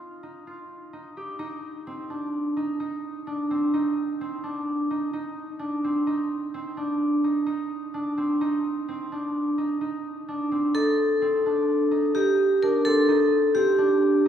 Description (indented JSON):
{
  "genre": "contemporary instrumental, chamber music in an uneven meter",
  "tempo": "128 BPM",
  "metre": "5/4",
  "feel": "straight",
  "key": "C dorian",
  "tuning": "A4 = 440 Hz",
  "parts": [
    { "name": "concert harp", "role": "arpeggios", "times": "0.0-14.3 s", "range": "C4 to G4", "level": "-26 LUFS", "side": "right 2 dB", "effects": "none" },
    { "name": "vibraphone with hard mallets", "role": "second line", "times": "10.7-14.3 s", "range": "G4 to Bb4", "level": "-20 LUFS", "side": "left 1 dB", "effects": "none" }
  ],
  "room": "moderate concert hall reverb, RT60 2.3 s",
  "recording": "heard from further back in the room",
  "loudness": "-22 LUFS",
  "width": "side -9 dB against mid",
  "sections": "0.0-1.4 A section; 1.4-14.3 B section",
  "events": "none",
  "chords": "0.0 Cm",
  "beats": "0.46 0.93 | 1.40 1.86 2.33 2.80 3.27 | 3.74 4.20 4.67 5.14 5.61 | 6.08 6.54 7.01 7.48 7.95 | 8.41 8.88 9.35 9.82 10.29 | 10.76 11.22 11.69 12.16 12.63 | 13.10 13.56 14.03"
}